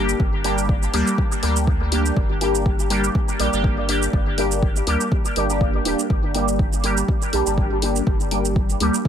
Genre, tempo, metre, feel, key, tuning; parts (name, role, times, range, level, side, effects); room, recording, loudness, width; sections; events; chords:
dub techno; 122 BPM; 4/4; swing 56% on 16ths; G minor; A4 = 440 Hz
resonant sweep polysynth; stabs; 0.0-9.0 s; G3 to G4; -22 LUFS; equal; chorus, phaser, sidechain pumping, dub echo
warm sub bass; bass; 0.0-9.1 s; D1 to D2; -25 LUFS; equal; sidechain pumping
electronic shaker and hi-hat; drums; 0.1-9.0 s; -28 LUFS; right 2 dB; overdrive
electronic kick drum; drums; 0.2-9.1 s; -21 LUFS; equal; overdrive
filtered dub chord stab; riff; 0.4-8.4 s; D4 to G5; -35 LUFS; right 2 dB; phaser, wide subtle chorus, sidechain pumping, dub echo
little or no reverb; -18 LUFS; side -9 dB against mid
0.0-9.1 A section
filter sweep on analog polysynth 0.0-9.1
0.0 Gm